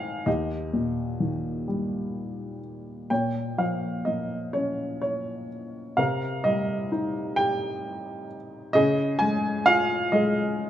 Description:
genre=classical, lyrical solo piano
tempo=43 BPM (dotted quarters)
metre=6/8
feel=rubato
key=unclear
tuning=A4 = 445 Hz
part: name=warm upright piano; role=solo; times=0.0-10.7 s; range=Eb2 to Ab5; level=-24 LUFS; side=equal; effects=none
room=light reverb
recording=none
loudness=-24 LUFS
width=side -11 dB against mid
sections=0.0-10.7 A section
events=none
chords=0.3 Eb; 3.1 Bbm; 6.0 Cm7; 8.7 Dbadd9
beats=| 0.27 1.68 | 3.11 4.55 | 5.98 7.38 | 8.75 10.12

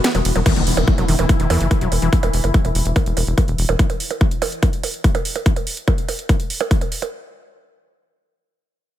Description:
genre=psychedelic trance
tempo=144 BPM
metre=4/4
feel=straight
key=unclear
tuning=A4 = 440 Hz
part: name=bubbling stepped-filter texture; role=sustained chords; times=0.0-3.8 s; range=E3 to E4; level=-27 LUFS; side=left 2 dB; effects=chorus, built-in reverb, sidechain pumping
part: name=overdriven acid bass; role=riff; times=0.0-2.1 s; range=D#3 to B3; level=-24 LUFS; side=moving between left 6 dB and right 2 dB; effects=auto-pan, sidechain pumping, ping-pong delay
part: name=techno drum kit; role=drums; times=0.0-7.1 s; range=crash cymbal, hi-hat, percussion blips, ride cymbal, snare drum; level=-24 LUFS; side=right 5 dB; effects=none
part: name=tight sequencer bass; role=bass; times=0.1-3.8 s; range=E1 to E2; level=-20 LUFS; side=equal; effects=tube saturation
part: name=electronic kick drum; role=drums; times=0.5-6.8 s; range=none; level=-17 LUFS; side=equal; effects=none
part: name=impact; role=sound effects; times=0.5-2.1 s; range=none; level=-26 LUFS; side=left 1 dB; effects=none
room=little or no reverb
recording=none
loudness=-16 LUFS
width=side -12 dB against mid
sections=0.5-7.1 A section; 7.1-9.0 B section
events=break 0.0-0.5; impact 0.5-2.1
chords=none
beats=0.04 | 0.46 0.88 1.29 1.71 | 2.13 2.54 2.96 3.38 | 3.79 4.21 4.63 5.04 | 5.46 5.88 6.29 6.71

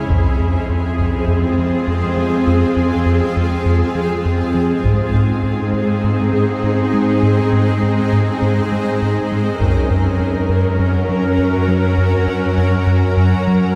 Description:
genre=cinematic, hybrid orchestral and electronic film score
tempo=101 BPM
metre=4/4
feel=straight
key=unclear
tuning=A4 = 439 Hz
part: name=warm studio viola section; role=accompaniment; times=0.0-13.8 s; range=C4 to A#4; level=-23 LUFS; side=equal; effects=none
part: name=shimmering ambient pad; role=sustained chords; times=0.0-13.8 s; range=F#3 to A#4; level=-24 LUFS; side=equal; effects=chorus, built-in reverb
part: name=dark symphonic cello section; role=bass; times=0.0-13.8 s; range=F2 to G#2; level=-22 LUFS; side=equal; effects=none
part: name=round analog bass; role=riff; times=0.1-13.6 s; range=F2 to G#3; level=-21 LUFS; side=equal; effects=none
part: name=taiko ensemble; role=drums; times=0.1-1.3, 4.8-6.0, 9.6-10.8 s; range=none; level=-26 LUFS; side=equal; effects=none
part: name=reverse cymbal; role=sound effects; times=12.0-13.8 s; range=none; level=barely audible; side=none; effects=none
room=wet scoring stage reverb, RT60 1.6 s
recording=heard from further back in the room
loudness=-16 LUFS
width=mono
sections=0.0-13.8 A section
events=build-up 0.0-13.8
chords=0.1 Fm; 4.9 G#; 9.6 F#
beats=| 0.10 0.69 1.29 1.88 | 2.48 3.07 3.67 4.26 | 4.85 5.45 6.04 6.63 | 7.23 7.82 8.42 9.01 | 9.61 10.20 10.79 11.39 | 11.98 12.58 13.17

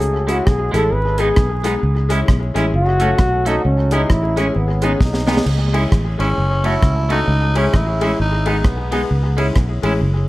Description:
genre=ska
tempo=132 BPM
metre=4/4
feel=swing 60% on 8ths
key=C# minor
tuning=A4 = 437 Hz
part: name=warm trombone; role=melody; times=0.0-5.4 s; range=B3 to B4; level=-21 LUFS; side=equal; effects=tape echo
part: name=fingered electric bass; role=bass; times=0.0-10.3 s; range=F#1 to C#2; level=-18 LUFS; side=equal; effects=none
part: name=deep reggae drum kit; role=drums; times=0.0-9.9 s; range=crash cymbal, hi-hat, kick drum, ride cymbal, rim click, snare drum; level=-19 LUFS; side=equal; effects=tape echo
part: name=clean electric guitar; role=accompaniment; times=0.3-9.9 s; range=G#3 to F#4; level=-25 LUFS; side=right 3 dB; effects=none
part: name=bright upright piano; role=stabs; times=0.3-10.0 s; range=G#3 to A4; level=-23 LUFS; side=left 3 dB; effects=tape echo
part: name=growling tenor saxophone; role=melody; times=6.2-9.4 s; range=B3 to E4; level=-22 LUFS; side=equal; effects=tape echo
room=moderate club reverb, RT60 0.8 s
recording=vinyl crackle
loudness=-14 LUFS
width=side -17 dB against mid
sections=0.0-5.5 A section; 5.5-10.3 A section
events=trombone solo 0.0-5.5; drum fill 5.0-5.5; tenor saxophone solo 5.5-10.3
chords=0.0 C#m; 0.9 G#m; 1.8 C#m; 2.7 F#m; 3.6 C#m; 4.6 G#m; 5.5 C#m; 6.4 F#m; 7.3 C#m; 8.2 G#m; 9.1 C#m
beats=| 0.01 0.46 0.92 1.37 | 1.83 2.28 2.74 3.19 | 3.64 4.10 4.55 5.01 | 5.46 5.92 6.37 6.83 | 7.28 7.74 8.19 8.65 | 9.10 9.56 10.01

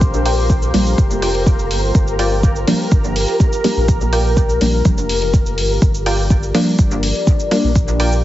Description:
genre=dub techno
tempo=124 BPM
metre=4/4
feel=straight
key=G minor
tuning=A4 = 440 Hz
part: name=deep dark ambient pad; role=sustained chords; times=0.0-8.2 s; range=F4 to D5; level=-22 LUFS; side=left 1 dB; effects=chorus, built-in reverb, sidechain pumping
part: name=pure sine sub bass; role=bass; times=0.0-8.2 s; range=F1 to Bb1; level=-19 LUFS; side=equal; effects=sidechain pumping
part: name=electronic cabasa and hi-hat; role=drums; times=0.0-8.2 s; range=none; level=-26 LUFS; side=equal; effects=small room ambience
part: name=electronic kick drum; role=drums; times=0.0-7.9 s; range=none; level=-14 LUFS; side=equal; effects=small room ambience
part: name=flickering grainy texture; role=texture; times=0.0-8.2 s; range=Bb4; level=-26 LUFS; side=left 1 dB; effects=built-in reverb, sidechain pumping
part: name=filtered dub chord stab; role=riff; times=0.3-8.2 s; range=F4 to G5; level=-24 LUFS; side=right 2 dB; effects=wide subtle chorus, cassette tape, sidechain pumping, dub echo
part: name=filtered dub chord stab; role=stabs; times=0.7-7.7 s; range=F3 to D4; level=-20 LUFS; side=equal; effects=chorus, phaser, dub echo
room=light reverb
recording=heavily compressed radio sound, multiband compression, nothing above 7.8 kHz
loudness=-13 LUFS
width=side -14 dB against mid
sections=0.0-8.2 A section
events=filter sweep on synth stab 0.0-8.2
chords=0.0 Gm7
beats=| 0.01 0.50 0.98 1.47 | 1.95 2.43 2.92 3.40 | 3.88 4.37 4.85 5.34 | 5.82 6.30 6.79 7.27 | 7.76 8.24

